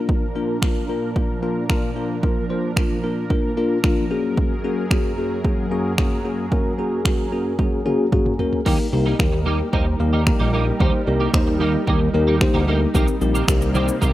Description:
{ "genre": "dance-pop", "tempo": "112 BPM", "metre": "4/4", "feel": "straight", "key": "Eb major", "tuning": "A4 = 440 Hz", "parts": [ { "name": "bell-like tine electric piano", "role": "accompaniment", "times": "0.0-14.1 s", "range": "Bb3 to C5", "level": "-22 LUFS", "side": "left 2 dB", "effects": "phaser, sidechain pumping" }, { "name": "lush unison pad", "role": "sustained chords", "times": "0.0-14.1 s", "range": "Gb2 to Bb4", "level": "-27 LUFS", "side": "right 1 dB", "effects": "chorus, phaser, sidechain pumping" }, { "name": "punchy analog drum machine", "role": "drums", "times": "0.1-14.1 s", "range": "crash cymbal, finger snaps, kick drum, shaker, toms", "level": "-20 LUFS", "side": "right 1 dB", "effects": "overdrive" }, { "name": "twelve-string electric guitar", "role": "riff", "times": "8.7-14.1 s", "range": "Eb3 to G4", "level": "-27 LUFS", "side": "right 4 dB", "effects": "ensemble chorus" }, { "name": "fat analog bass", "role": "bass", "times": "8.7-14.1 s", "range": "Bb1 to Eb2", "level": "-21 LUFS", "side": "right 1 dB", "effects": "sidechain pumping" } ], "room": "little or no reverb", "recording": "rough home demo mix", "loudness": "-18 LUFS", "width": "side -14 dB against mid", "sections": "0.0-8.7 A section; 8.7-14.1 B section", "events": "drum fill 7.6-8.7", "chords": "0.0 Bb; 4.1 Gbadd9; 8.7 Eb; 12.9 Cm7", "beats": "| 0.09 0.62 1.16 1.70 | 2.23 2.77 3.30 3.84 | 4.38 4.91 5.45 5.98 | 6.52 7.05 7.59 8.12 | 8.66 9.20 9.73 10.27 | 10.80 11.34 11.88 12.41 | 12.95 13.48 14.02" }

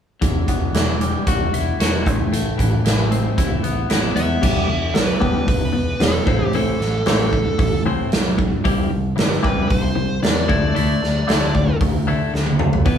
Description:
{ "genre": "quiet-loud alternative rock", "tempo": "114 BPM", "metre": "4/4", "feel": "straight", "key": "E minor", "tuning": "A4 = 440 Hz", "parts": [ { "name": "twelve-string electric guitar", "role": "arpeggios", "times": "0.2-13.0 s", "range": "E2 to F#4", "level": "-22 LUFS", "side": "left 3 dB", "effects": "phaser" }, { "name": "growling fingered electric bass", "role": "bass", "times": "0.2-13.0 s", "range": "E1 to E2", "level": "-23 LUFS", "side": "equal", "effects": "overdrive" }, { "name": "big rock drum kit", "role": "drums", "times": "0.2-13.0 s", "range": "crash cymbal, hi-hat, kick drum, snare drum, toms", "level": "-20 LUFS", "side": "right 1 dB", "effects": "none" }, { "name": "dark smooth lead guitar", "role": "melody", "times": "4.2-13.0 s", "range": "A4 to E5", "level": "-24 LUFS", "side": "right 1 dB", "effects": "overdrive" } ], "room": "moderate large studio reverb, RT60 0.9 s", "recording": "band playing live in one room, small room ambience", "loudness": "-16 LUFS", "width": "side -8 dB against mid", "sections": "0.2-4.4 A section; 4.4-13.0 B section", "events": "drum fill 12.3-12.9", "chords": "0.2 Emadd9; 2.1 Amadd9; 4.4 Em; 6.3 Amadd9; 8.6 C; 10.5 Dsus2", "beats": "| 0.22 0.75 1.27 1.80 | 2.33 2.85 3.38 3.90 | 4.43 4.96 5.48 6.01 | 6.54 7.06 7.59 8.12 | 8.64 9.17 9.70 10.23 | 10.75 11.28 11.81 12.34 | 12.87" }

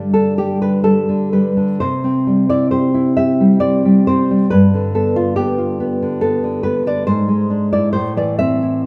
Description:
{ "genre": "romantic piece for solo classical guitar", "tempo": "62-71 BPM", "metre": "3/4", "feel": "rubato", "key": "C major", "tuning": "A4 = 440 Hz", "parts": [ { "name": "nylon-string guitar", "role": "solo", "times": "0.0-8.9 s", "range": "G2 to E5", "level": "-16 LUFS", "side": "equal", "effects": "none" } ], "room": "wet stone room reverb, RT60 1.3 s", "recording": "band playing live in one room", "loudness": "-16 LUFS", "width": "mono", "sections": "0.0-8.9 A section", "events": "none", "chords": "0.0 G; 1.8 C; 4.5 G7; 7.1 E7/G#; 7.9 Am", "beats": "0.85 | 1.81 2.73 3.63 | 4.51 5.37 6.22 | 7.07 7.94 8.85" }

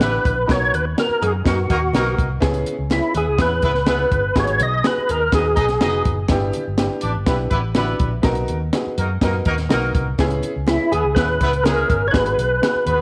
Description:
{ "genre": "uptempo 1960s-style soul", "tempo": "124 BPM", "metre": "4/4", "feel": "straight", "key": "B major", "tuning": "A4 = 443 Hz", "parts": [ { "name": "percussive tonewheel organ", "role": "melody", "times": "0.0-6.0, 10.7-13.0 s", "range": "E4 to D#5", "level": "-22 LUFS", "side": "equal", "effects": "overdrive, chorus vibrato, slow rotary speaker, tape echo" }, { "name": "clear horn section", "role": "second line", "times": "0.0-13.0 s", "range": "G#3 to D#5", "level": "-28 LUFS", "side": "equal", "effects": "none" }, { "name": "dark upright piano", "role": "accompaniment", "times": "0.0-13.0 s", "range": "B3 to A#4", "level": "-28 LUFS", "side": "equal", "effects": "none" }, { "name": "fingered electric bass", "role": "bass", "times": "0.0-13.0 s", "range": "E#1 to F#2", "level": "-26 LUFS", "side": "equal", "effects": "none" }, { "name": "compact cocktail drum kit", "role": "drums", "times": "0.0-13.0 s", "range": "hi-hat, kick drum, snare drum", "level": "-24 LUFS", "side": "equal", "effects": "none" }, { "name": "congas", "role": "percussion", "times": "0.0-13.0 s", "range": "none", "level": "-36 LUFS", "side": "equal", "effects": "none" } ], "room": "light reverb, small room ambience", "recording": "none", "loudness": "-19 LUFS", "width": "mono", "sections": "0.0-13.0 A section", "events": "none", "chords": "0.5 Bmaj7; 2.4 C#m7; 4.4 G#m7; 6.3 G6; 8.2 Bmaj7; 10.2 C#m7; 12.1 G#m7", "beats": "0.00 | 0.48 0.97 1.45 1.94 | 2.42 2.91 3.39 3.88 | 4.36 4.84 5.33 5.82 | 6.30 6.79 7.27 7.76 | 8.24 8.73 9.22 9.70 | 10.19 10.68 11.16 11.65 | 12.14 12.63" }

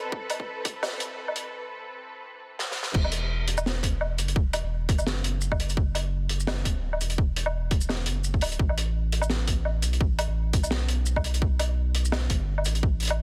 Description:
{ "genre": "half-time drum and bass", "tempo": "170 BPM", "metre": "4/4", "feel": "swing 56% on 16ths, half-time", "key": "unclear", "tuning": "A4 = 440 Hz", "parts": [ { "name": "muted studio string section", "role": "sustained chords", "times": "0.0-2.9 s", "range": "E3 to B4", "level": "-39 LUFS", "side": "equal", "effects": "sidechain pumping" }, { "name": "electronic kick drum", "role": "drums", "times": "0.1-0.7, 2.9-12.9 s", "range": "none", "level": "-28 LUFS", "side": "equal", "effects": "none" }, { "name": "crunchy breakbeat drum kit", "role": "drums", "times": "0.3-13.2 s", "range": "crash cymbal, hi-hat, shaker, snare drum, woodblock", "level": "-32 LUFS", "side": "equal", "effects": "high-pass filter on hats, high-pass filter on cymbals, high-pass filter on snare, high-pass filter on perc, high-pass filter on room" }, { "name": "saturated sub bass", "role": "bass", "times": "2.9-13.2 s", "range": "D1 to B1", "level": "-30 LUFS", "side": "equal", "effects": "tube saturation" } ], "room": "studio reverb", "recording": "dense, heavily limited modern master, high-pass filter", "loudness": "-27 LUFS", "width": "mono", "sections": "0.0-2.9 A section; 2.9-13.2 B section", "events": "build-up 0.0-2.9; break 1.5-2.9; drum fill 2.6-2.9; drop 2.9-13.2", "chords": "0.0 Amadd9; 2.9 Esus2; 8.6 Asus2", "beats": "| 0.12 0.48 0.83 1.18 | 1.53 1.89 2.24 2.59 | 2.95 3.30 3.65 4.01 | 4.36 4.71 5.06 5.42 | 5.77 6.12 6.48 6.83 | 7.18 7.54 7.89 8.24 | 8.59 8.95 9.30 9.65 | 10.01 10.36 10.71 11.06 | 11.42 11.77 12.12 12.48 | 12.83 13.18" }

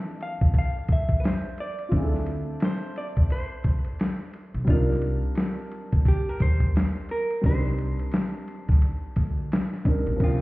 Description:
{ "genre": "hip hop, jazz-hop", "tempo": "87 BPM", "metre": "4/4", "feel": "swing 60% on 16ths", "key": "C dorian", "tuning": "A4 = 440 Hz", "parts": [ { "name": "hollow-body jazz guitar", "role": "melody", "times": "0.0-10.4 s", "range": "F4 to F5", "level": "-33 LUFS", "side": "right 1 dB", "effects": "analog delay" }, { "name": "dark baby grand piano", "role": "accompaniment", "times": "0.0-10.4 s", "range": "E3 to G5", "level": "-32 LUFS", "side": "equal", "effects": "none" }, { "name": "dusty soul sampler-style drum kit", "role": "drums", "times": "0.2-10.4 s", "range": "crash cymbal, hi-hat, kick drum, ride cymbal, snare drum", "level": "-23 LUFS", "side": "equal", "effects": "vintage 12-bit sampler grit" }, { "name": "upright bass", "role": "bass", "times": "0.4-10.4 s", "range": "Bb1 to F2", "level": "-27 LUFS", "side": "equal", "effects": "none" } ], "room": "light reverb", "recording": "heard muffled through a wall, stone room reverb, vinyl crackle, EQ", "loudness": "-22 LUFS", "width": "side -20 dB against mid", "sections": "0.0-10.2 A section", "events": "none", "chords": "0.0 Dm9; 4.7 Cm9", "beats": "0.54 1.23 | 1.92 2.61 3.30 3.99 | 4.68 5.37 6.06 6.75 | 7.44 8.13 8.82 9.51 | 10.20" }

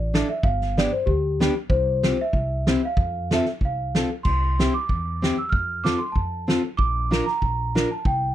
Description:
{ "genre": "alpine folk, alpine dance band", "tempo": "95 BPM", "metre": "2/4", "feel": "swing 53% on 8ths", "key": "F major", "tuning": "A4 = 440 Hz", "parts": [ { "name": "large celesta", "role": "melody", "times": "0.0-8.3 s", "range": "G4 to F6", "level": "-26 LUFS", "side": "equal", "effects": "none" }, { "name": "upright bass", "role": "bass", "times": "0.0-8.3 s", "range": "G1 to F2", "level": "-26 LUFS", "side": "equal", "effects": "none" }, { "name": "fingerpicked plugged-in steel-string acoustic guitar", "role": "accompaniment", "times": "0.1-7.9 s", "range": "B3 to Bb4", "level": "-24 LUFS", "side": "left 1 dB", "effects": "none" }, { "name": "loose indie drum kit", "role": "drums", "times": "0.1-8.2 s", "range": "crash cymbal, kick drum, snare drum", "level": "-24 LUFS", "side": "equal", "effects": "none" } ], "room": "little or no reverb", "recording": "none", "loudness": "-20 LUFS", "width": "side -12 dB against mid", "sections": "0.0-4.2 A section; 4.2-8.3 A section", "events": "none", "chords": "0.4 G; 1.7 Csus4; 2.3 C; 3.0 F; 4.2 Cadd9; 5.5 F; 6.8 Bb", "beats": "| 0.43 1.06 | 1.69 2.33 | 2.97 3.61 | 4.25 4.89 | 5.52 6.15 | 6.79 7.42 | 8.05" }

